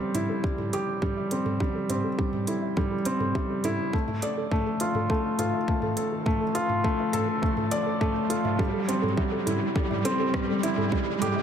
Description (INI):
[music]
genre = piano and strings electronica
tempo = 103 BPM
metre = 4/4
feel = straight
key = A minor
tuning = A4 = 440 Hz
[part]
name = soft round pluck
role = arpeggios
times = 0.0-11.4 s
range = A4 to E5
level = -37 LUFS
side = right 1 dB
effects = chorus, sidechain pumping, digital delay, shimmer reverb
[part]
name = felt-muted upright piano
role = riff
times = 0.0-11.4 s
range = G3 to D5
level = -26 LUFS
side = equal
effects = digital delay, shimmer reverb
[part]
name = riser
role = sound effects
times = 2.6-11.4 s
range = none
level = -35 LUFS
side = right 1 dB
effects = none
[part]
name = organic electronic drum kit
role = drums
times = 0.1-11.3 s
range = hi-hat, rim click, toms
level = -34 LUFS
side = right 1 dB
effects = none
[part]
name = electronic kick drum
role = drums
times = 0.4-11.0 s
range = none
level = -29 LUFS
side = equal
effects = none
[sound]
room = wet lush hall reverb, RT60 1.6 s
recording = none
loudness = -24 LUFS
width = side -8 dB against mid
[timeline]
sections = 0.0-11.4 A section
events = build-up 0.0-11.4; riser 2.6-11.4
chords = 0.0 Am7; 3.9 Dm; 8.6 Am7